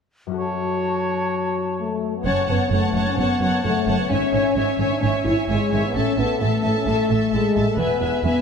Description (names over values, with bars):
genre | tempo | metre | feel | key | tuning
cinematic | 130 BPM | 4/4 | straight | F# minor | A4 = 439 Hz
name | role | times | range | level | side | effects
concert harp | arpeggios | 0.3-4.1 s | F#2 to A4 | -29 LUFS | left 9 dB | none
mellow hollow silver concert flute | second line | 0.4-2.0 s | A5 | -29 LUFS | equal | none
warm clarinet | second line | 0.4-2.0 s | F#4 | -29 LUFS | equal | none
warm oboe | second line | 0.4-2.0 s | C#5 | -28 LUFS | right 1 dB | none
mellow French horn section | sustained chords | 1.8-8.4 s | G#3 to E4 | -21 LUFS | left 4 dB | none
rich symphonic viola section | accompaniment | 2.2-8.4 s | A4 to C#5 | -27 LUFS | right 2 dB | none
rich symphonic double bass section | bass | 2.2-8.3 s | E1 to A1 | -26 LUFS | right 4 dB | none
warm symphonic violin section | melody | 2.3-8.4 s | G#5 to A5 | -32 LUFS | left 3 dB | none
warm symphonic violin section | second line | 2.3-8.4 s | E5 to F#5 | -28 LUFS | equal | none
dark symphonic cello section | bass | 2.3-8.3 s | E2 to A2 | -26 LUFS | right 3 dB | none
room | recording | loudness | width
moderate scoring stage reverb, RT60 2.0 s | none | -18 LUFS | side -6 dB against mid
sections
0.4-2.2 A section; 2.2-8.4 B section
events
none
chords
0.4 F#m; 4.1 C#m/G#; 5.9 A5; 7.8 E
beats
| 0.38 0.85 1.31 1.77 | 2.25 2.71 3.18 3.64 | 4.11 4.57 5.03 5.49 | 5.95 6.41 6.87 7.33 | 7.78 8.24